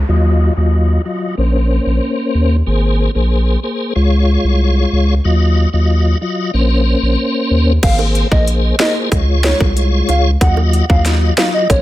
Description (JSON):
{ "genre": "dancehall", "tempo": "93 BPM", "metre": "4/4", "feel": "straight", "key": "unclear", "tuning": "A4 = 440 Hz", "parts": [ { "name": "saturated sub bass", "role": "bass", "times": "0.0-11.8 s", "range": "Ab1 to Eb2", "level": "-13 LUFS", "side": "equal", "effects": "none" }, { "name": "downlifter", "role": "sound effects", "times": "0.0-2.7 s", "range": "none", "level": "-34 LUFS", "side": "equal", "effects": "none" }, { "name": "tonewheel organ", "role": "accompaniment", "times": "0.1-11.8 s", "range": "Gb3 to Eb5", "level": "-17 LUFS", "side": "left 2 dB", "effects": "chorus vibrato, fast rotary speaker, sidechain pumping, low-pass filter" }, { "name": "hollow clarinet-like synth lead", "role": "melody", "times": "7.8-11.8 s", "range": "Db5 to Gb5", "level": "-20 LUFS", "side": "equal", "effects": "chorus, tape echo" }, { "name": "island pop drum kit", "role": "drums", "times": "7.8-11.8 s", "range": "crash cymbal, hi-hat, kick drum, snare drum", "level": "-15 LUFS", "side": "equal", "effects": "overdrive" }, { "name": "bongos", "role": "percussion", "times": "7.8-11.8 s", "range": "none", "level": "-24 LUFS", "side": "right 8 dB", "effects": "none" } ], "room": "little or no reverb", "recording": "none", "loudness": "-12 LUFS", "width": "side -15 dB against mid", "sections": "0.0-7.8 A section; 7.8-11.8 B section", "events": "filter sweep on tonewheel organ 0.0-7.8", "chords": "0.1 Ebmadd9; 1.4 Bbmadd9; 2.7 Abadd9; 4.0 Db; 5.2 Ebmadd9; 6.5 Bbmadd9; 7.8 Abadd9; 9.1 Db; 10.4 Ebmadd9" }